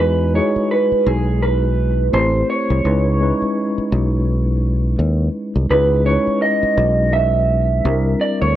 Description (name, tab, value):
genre	R&B, neo-soul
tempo	84 BPM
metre	4/4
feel	swing 58% on 16ths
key	C# minor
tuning	A4 = 440 Hz
part	electric guitar through a small old amp	melody	0.0-8.6 s	G#4 to E5	-19 LUFS	right 2 dB	wide subtle chorus
part	mellow tine electric piano	accompaniment	0.0-8.6 s	G3 to G#5	-21 LUFS	left 1 dB	medium stereo tremolo
part	fingered electric bass	bass	0.0-8.6 s	A1 to E2	-17 LUFS	equal	none
room	light reverb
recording	worn, warbling old tape, cassette tape, warbly pitch drift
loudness	-15 LUFS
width	side -12 dB against mid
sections	0.0-5.7 A section; 5.7-8.6 A section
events	none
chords	0.0 Emaj9; 2.1 Am7; 2.8 C#m9; 5.7 C#m7; 7.8 C9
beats	0.69 1.41 2.12 | 2.84 3.55 4.26 4.98 | 5.69 6.41 7.12 7.84 | 8.55